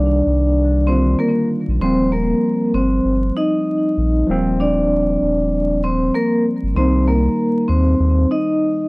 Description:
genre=hip hop, boom-bap hip-hop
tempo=97 BPM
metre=4/4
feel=swing 58% on 16ths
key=Eb major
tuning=A4 = 439 Hz
part: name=vibraphone with medium mallets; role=melody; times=0.0-8.9 s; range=Bb3 to Eb5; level=-17 LUFS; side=equal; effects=high-pass filter, low-pass filter
part: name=tine electric piano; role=accompaniment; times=0.0-8.9 s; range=D3 to F4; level=-22 LUFS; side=right 1 dB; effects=medium stereo tremolo, high-pass filter, low-pass filter
part: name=warm sub bass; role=bass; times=0.0-8.3 s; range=Eb1 to Eb2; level=-18 LUFS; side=equal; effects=none
room=small room ambience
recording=dry, gritty hardware recording, vinyl crackle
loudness=-15 LUFS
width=side -25 dB against mid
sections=0.0-8.9 A section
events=none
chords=0.0 Cm7; 1.8 Eb6; 6.8 Cm7

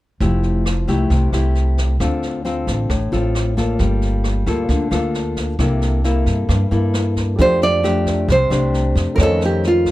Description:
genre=bossa nova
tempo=134 BPM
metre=4/4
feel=straight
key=F major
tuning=A4 = 440 Hz
part: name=nylon-string guitar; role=accompaniment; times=0.2-9.9 s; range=F2 to A4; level=-20 LUFS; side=left 2 dB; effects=none
part: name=upright bass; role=bass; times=0.2-9.9 s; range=F1 to G2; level=-19 LUFS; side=equal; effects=none
part: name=jazz brush drum kit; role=drums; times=0.2-9.9 s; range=kick drum, rim click, snare drum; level=-24 LUFS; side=equal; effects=none
part: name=nylon-string guitar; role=melody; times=7.4-9.9 s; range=F4 to D5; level=-17 LUFS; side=right 2 dB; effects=none
part: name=warm grand piano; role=accompaniment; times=7.4-9.9 s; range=G4 to Eb5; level=-26 LUFS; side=right 4 dB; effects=none
room=little or no reverb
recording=none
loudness=-15 LUFS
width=side -16 dB against mid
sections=0.2-7.4 A section; 7.4-9.9 B section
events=none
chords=0.2 Fmaj9; 2.0 Dm7; 3.8 Gm9; 5.6 C6; 7.4 F69; 9.2 F7b13

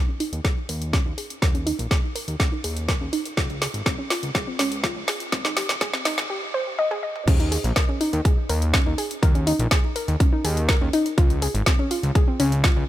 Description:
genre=progressive house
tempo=123 BPM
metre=4/4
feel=straight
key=unclear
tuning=A4 = 440 Hz
part: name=soft round pluck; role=arpeggios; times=0.1-12.7 s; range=C4 to Eb5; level=-27 LUFS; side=equal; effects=chorus, sidechain pumping, dub echo
part: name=deep house drum kit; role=drums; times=0.2-12.7 s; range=crash cymbal, hi-hat, snare drum, toms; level=-26 LUFS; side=equal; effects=high-pass filter on snare, small room ambience, high-pass filter on hats, high-pass filter on toms, high-pass filter on cymbals
part: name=fat analog bass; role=bass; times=0.3-12.8 s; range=Eb1 to Eb2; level=-25 LUFS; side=equal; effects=sidechain pumping
part: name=electronic kick drum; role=drums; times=0.4-12.7 s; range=none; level=-20 LUFS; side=equal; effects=small room ambience
room=little or no reverb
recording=high-pass filter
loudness=-20 LUFS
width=side -14 dB against mid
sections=0.0-7.3 A section; 7.3-12.9 B section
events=build-up 0.0-7.3; drum fill 0.0-6.3, 6.8-7.3; filter sweep on synth pluck 0.0-7.3; filter sweep 0.0-7.3; break 6.3-7.3; drop 7.3-12.9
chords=0.0 Eb7sus4; 3.4 Dbmaj7; 5.3 Abmaj7; 7.3 Eb7sus4; 11.2 Dbmaj7

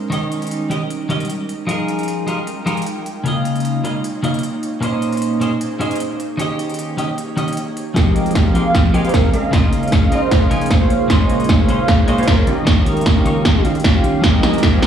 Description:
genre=future bass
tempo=153 BPM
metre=4/4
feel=half-time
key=F minor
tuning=A4 = 437 Hz
part: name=ethereal airy pad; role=sustained chords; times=0.0-14.9 s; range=Db3 to Db5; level=-26 LUFS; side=right 2 dB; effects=ensemble chorus, built-in reverb, sidechain pumping
part: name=twelve-string electric guitar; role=accompaniment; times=0.1-14.9 s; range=Bb2 to C6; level=-21 LUFS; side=left 1 dB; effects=sidechain pumping, tape echo
part: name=big-room dance drum kit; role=drums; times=0.1-14.9 s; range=hi-hat, snare drum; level=-21 LUFS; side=right 1 dB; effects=none
part: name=big bright polysynth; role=riff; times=8.0-14.9 s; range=Eb3 to Ab5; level=-19 LUFS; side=right 1 dB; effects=chorus, sidechain pumping, tape echo
part: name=saturated sub bass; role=bass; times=8.0-14.9 s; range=none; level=barely audible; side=none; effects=none
part: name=electronic kick drum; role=drums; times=8.0-14.7 s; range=none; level=-16 LUFS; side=equal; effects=none
part: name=breathy flute-like synth lead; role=melody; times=8.7-13.6 s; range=Bb4 to F5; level=-23 LUFS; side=right 2 dB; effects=analog chorus, sidechain pumping, tape echo
part: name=riser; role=sound effects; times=14.7-14.9 s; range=none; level=-31 LUFS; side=equal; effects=none
room=light reverb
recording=played on a big sound system in a bare room, stone room reverb, small room ambience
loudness=-14 LUFS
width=side -9 dB against mid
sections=0.0-8.0 A section; 8.0-14.9 B section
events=build-up 8.0-14.9; drum fill 8.0-14.9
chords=0.1 Eb7; 1.7 Fm11; 3.1 Db69; 4.6 Bbm11; 6.4 Eb7; 8.0 Fm11; 9.3 Db69; 10.9 Bbm11; 12.7 Eb7; 14.2 Fm11

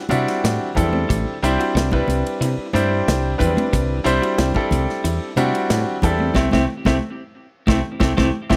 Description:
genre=electric jazz fusion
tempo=91 BPM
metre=4/4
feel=straight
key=C lydian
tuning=A4 = 439 Hz
part: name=bright baby grand piano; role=accompaniment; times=0.0-8.6 s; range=G3 to C5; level=-23 LUFS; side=equal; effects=none
part: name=clean electric guitar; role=stabs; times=0.1-8.6 s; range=C4 to G4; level=-29 LUFS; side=equal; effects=lush chorus, tape echo
part: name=woody fretless electric bass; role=bass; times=0.1-8.6 s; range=A1 to C3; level=-24 LUFS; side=equal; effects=none
part: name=modern studio drum kit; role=drums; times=0.1-8.6 s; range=hi-hat, kick drum, ride cymbal, snare drum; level=-26 LUFS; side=equal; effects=none
part: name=congas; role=percussion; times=0.1-8.6 s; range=none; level=-28 LUFS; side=equal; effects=none
room=light reverb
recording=none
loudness=-19 LUFS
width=mono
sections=0.0-8.6 A section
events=band accent 6.4-8.6; drum fill 8.3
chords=0.0 C69

